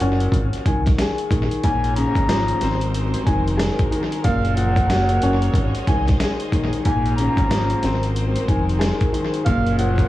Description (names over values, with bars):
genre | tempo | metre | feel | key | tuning
hip hop, boom-bap hip-hop | 92 BPM | 4/4 | swing 62% on 16ths | unclear | A4 = 440 Hz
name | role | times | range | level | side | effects
trumpet with bucket mute | melody | 0.0-10.1 s | F5 to Bb5 | -26 LUFS | equal | high-pass filter, low-pass filter, tape echo
clear upright piano | accompaniment | 0.0-10.1 s | Ab2 to Ab4 | -23 LUFS | left 2 dB | cassette tape, high-pass filter, low-pass filter, tape echo
deep dub fingered electric bass | bass | 0.0-10.1 s | F1 to C2 | -22 LUFS | equal | none
dusty soul sampler-style drum kit | drums | 0.0-10.1 s | hi-hat, kick drum, snare drum | -22 LUFS | equal | tape echo
warm studio string section | sustained chords | 1.6-10.1 s | Ab3 to Eb5 | -29 LUFS | equal | high-pass filter, low-pass filter
room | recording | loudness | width
small room ambience | echo-heavy mix, vinyl crackle | -17 LUFS | side -15 dB against mid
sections
0.0-10.1 A section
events
none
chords
0.3 Abadd9; 1.6 Bbm7; 2.6 Ab7; 4.2 Gbmaj7; 5.6 Abadd11; 6.9 Bbm7; 7.8 Ab7; 9.5 Gbmaj7